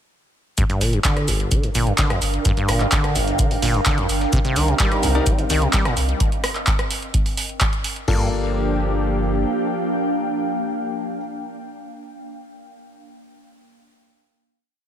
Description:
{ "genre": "acid house", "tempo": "128 BPM", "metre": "4/4", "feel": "straight", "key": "G minor", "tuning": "A4 = 440 Hz", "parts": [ { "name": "acid bass, saw", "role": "riff", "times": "0.6-8.3 s", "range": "G1 to G3", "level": "-23 LUFS", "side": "equal", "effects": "overdrive, sidechain pumping, ping-pong delay" }, { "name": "breakbeat sampler-style drum kit", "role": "drums", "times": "0.6-6.1 s", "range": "hi-hat, shaker, snare drum", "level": "-31 LUFS", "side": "left 2 dB", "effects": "sidechain pumping on perc, high-pass filter on perc, sidechain pumping on hats, high-pass filter on hats, high-pass filter on snare" }, { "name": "electronic kick drum", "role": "drums", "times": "0.6-8.2 s", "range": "none", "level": "-22 LUFS", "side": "equal", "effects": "none" }, { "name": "punchy analog drum machine", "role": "drums", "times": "0.6-8.2 s", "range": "crash cymbal, handclaps, hi-hat, rim click", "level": "-24 LUFS", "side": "right 1 dB", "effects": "none" }, { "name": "ethereal airy pad", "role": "texture", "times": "1.5-11.4 s", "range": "Bb3 to G5", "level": "-26 LUFS", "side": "right 2 dB", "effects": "ensemble chorus, built-in reverb, sidechain pumping" }, { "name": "warm sub bass", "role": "bass", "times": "0.8-9.4 s", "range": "G1 to C2", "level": "-23 LUFS", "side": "equal", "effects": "sidechain pumping" }, { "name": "warm analog pad", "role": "sustained chords", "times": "4.6-11.2 s", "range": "F3 to Bb4", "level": "-26 LUFS", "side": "equal", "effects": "chorus, sidechain pumping" }, { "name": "warm grand piano", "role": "stabs", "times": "5.2, 8.1-11.2 s", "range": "Bb3 to D5", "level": "-29 LUFS", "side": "left 6 dB", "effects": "ping-pong delay" } ], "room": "light reverb", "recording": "none", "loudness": "-18 LUFS", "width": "side -10 dB against mid", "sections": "0.6-8.1 groove; 8.1-11.8 final chord", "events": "none", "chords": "0.6 Gm7; 4.3 Cm7; 8.1 Gm7" }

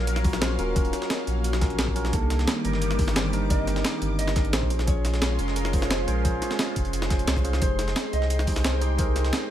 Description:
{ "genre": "liquid drum and bass", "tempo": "175 BPM", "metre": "4/4", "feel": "straight", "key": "F minor", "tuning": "A4 = 445 Hz", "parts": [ { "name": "mellow electric guitar", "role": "melody", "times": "0.0-9.5 s", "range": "A4 to Eb5", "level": "-33 LUFS", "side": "equal", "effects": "lush chorus, dub echo" }, { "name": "bell-like tine electric piano", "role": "accompaniment", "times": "0.0-9.5 s", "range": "Bb3 to Db5", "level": "-31 LUFS", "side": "right 1 dB", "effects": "dub echo" }, { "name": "lush unison pad", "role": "sustained chords", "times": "0.0-9.5 s", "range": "Eb3 to D6", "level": "-32 LUFS", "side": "equal", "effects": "chorus, phaser, sidechain pumping" }, { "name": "warm sub bass", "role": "bass", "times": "0.0-9.3 s", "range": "Eb1 to C2", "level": "-26 LUFS", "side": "equal", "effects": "none" }, { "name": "breakbeat sampler-style drum kit", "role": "drums", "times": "0.1-9.4 s", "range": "hi-hat, snare drum", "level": "-30 LUFS", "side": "equal", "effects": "studio ambience" }, { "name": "breakbeat sampler-style drum kit", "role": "drums", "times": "0.1-9.4 s", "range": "hi-hat, snare drum", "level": "-35 LUFS", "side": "equal", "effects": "high-pass filter on hats, studio ambience, high-pass filter on snare" }, { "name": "electronic kick drum", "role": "drums", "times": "0.2-9.1 s", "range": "none", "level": "-26 LUFS", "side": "equal", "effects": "overdrive, studio ambience" } ], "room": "digital ambience", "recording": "none", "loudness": "-22 LUFS", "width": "side -11 dB against mid", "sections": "0.0-9.5 A section", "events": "none", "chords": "0.0 Ebm7; 2.1 Cm7; 4.7 Bbm7; 7.6 Fm7" }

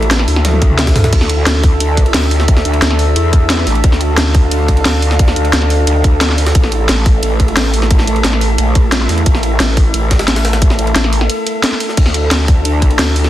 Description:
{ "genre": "dark technical drum and bass", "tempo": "177 BPM", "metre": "4/4", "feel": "straight", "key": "D minor", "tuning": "A4 = 441 Hz", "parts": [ { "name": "metallic inharmonic drone", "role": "sustained chords", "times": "0.0-13.3 s", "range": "A3 to F5", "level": "-19 LUFS", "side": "equal", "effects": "chorus, built-in reverb, sidechain pumping" }, { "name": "growl bass", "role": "bass", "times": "0.0-13.3 s", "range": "A1 to E2", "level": "-14 LUFS", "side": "equal", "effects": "chorus" }, { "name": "jungle sampler-style drum kit", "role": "drums", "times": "0.0-13.3 s", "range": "hi-hat, ride cymbal, snare drum", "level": "-24 LUFS", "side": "right 1 dB", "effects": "high-pass filter on cymbals, studio reverb, high-pass filter on snare, high-pass filter on hats" }, { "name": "warbly tape-like pad", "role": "texture", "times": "0.0-1.1 s", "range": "E4 to A5", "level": "-32 LUFS", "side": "left 1 dB", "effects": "none" }, { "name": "drum and bass drum kit", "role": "drums", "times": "0.1-13.3 s", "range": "crash cymbal, hi-hat, snare drum, toms", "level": "-16 LUFS", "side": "equal", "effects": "studio reverb" }, { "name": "electronic kick drum", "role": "drums", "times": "0.6-12.9 s", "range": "none", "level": "-10 LUFS", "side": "equal", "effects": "studio reverb" } ], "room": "light reverb, digital ambience", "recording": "dense, heavily limited modern master", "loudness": "-10 LUFS", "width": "side -13 dB against mid", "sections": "0.0-1.1 A section; 1.1-13.3 A section", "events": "drop 0.0-1.1, 1.1-13.3; drum fill 0.4-1.1; break 11.3-12.0", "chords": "0.0 Asus4; 1.1 Dm; 6.5 A5; 12.0 D5" }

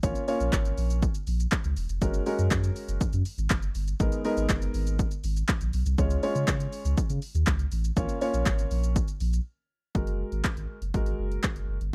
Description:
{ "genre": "dance-pop", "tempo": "121 BPM", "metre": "4/4", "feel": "straight", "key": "unclear", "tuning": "A4 = 441 Hz", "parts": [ { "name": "warm baby grand piano", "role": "accompaniment", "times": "0.0-11.8 s", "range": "G#3 to C#5", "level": "-34 LUFS", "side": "equal", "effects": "sidechain pumping" }, { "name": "sub bass with octave", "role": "bass", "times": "0.0-11.9 s", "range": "E1 to C#3", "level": "-30 LUFS", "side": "equal", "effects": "sidechain pumping" }, { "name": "punchy analog drum machine", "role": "drums", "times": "0.0-11.9 s", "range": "handclaps, hi-hat, kick drum, shaker", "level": "-31 LUFS", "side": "equal", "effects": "overdrive" } ], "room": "digital ambience", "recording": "dry, close 1970s-style studio recording", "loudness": "-28 LUFS", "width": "mono", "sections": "0.0-9.9 A section; 9.9-11.9 B section", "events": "break 9.5-9.9", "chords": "0.0 A#m; 2.0 F#add9; 4.0 G#madd9; 6.0 C#; 8.0 A#m; 9.9 F#add9" }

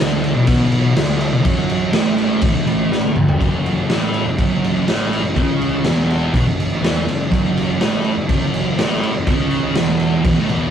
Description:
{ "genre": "garage rock duo or trio", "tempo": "123 BPM", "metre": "4/4", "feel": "straight", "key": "unclear", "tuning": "A4 = 435 Hz", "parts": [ { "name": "thick fuzz guitar", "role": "riff", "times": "0.0-10.7 s", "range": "E2 to F#3", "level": "-18 LUFS", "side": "right 1 dB", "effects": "distortion" }, { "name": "fuzz picked electric bass", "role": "bass", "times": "0.0-10.7 s", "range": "E1 to F#2", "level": "-25 LUFS", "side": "equal", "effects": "overdrive" }, { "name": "raw garage drum kit", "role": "drums", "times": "0.2-10.6 s", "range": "crash cymbal, kick drum, snare drum, toms", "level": "-18 LUFS", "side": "equal", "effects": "none" } ], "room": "moderate studio reverb, RT60 0.6 s", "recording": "rough rehearsal-room recording, tube saturation", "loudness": "-15 LUFS", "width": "side -8 dB against mid", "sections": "0.0-3.4 A section; 3.4-10.7 B section", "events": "drum fill 2.9-3.4", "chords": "0.0 B5; 3.4 F#5" }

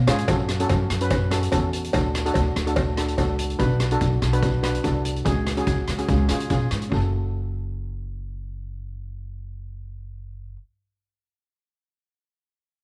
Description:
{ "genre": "calypso", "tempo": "144 BPM", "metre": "4/4", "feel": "swing 53% on 16ths", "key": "F# minor", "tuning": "A4 = 440 Hz", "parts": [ { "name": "upright bass", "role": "bass", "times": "0.0-10.6 s", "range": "F#1 to C#3", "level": "-28 LUFS", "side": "equal", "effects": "none" }, { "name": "steel pan", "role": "accompaniment", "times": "0.1-10.6 s", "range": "C#4 to B4", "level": "-29 LUFS", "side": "equal", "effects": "none" }, { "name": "street-band drum kit", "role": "drums", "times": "0.1-7.0 s", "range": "hi-hat, kick drum, rim click", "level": "-28 LUFS", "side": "equal", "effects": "none" }, { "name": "cowbell", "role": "percussion", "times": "0.1-3.3 s", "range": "none", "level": "-32 LUFS", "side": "equal", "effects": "none" } ], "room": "moderate echo chamber reverb, RT60 1.4 s, studio ambience", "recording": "none", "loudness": "-23 LUFS", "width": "mono", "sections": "0.3-6.9 A section; 6.9-10.2 B section", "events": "none", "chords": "0.3 F#m7; 1.9 D; 3.6 Bm; 5.3 C#sus4; 6.1 C#; 6.9 F#m" }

